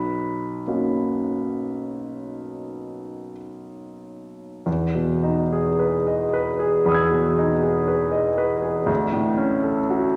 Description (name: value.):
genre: classical, impressionist solo piano.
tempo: 43-60 BPM.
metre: 4/4.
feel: rubato.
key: B major, E major from 4.7 s.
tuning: A4 = 439 Hz.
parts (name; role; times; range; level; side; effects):
warm grand piano; solo; 0.0-10.2 s; B1 to G#6; -23 LUFS; equal; none.
room: wet concert hall reverb, RT60 2.3 s.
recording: none.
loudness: -22 LUFS.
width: mono.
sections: 0.0-4.7 A section; 4.7-10.2 B section.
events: none.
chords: 0.0 Bmaj9; 4.7 Emaj7; 8.9 Dmaj7.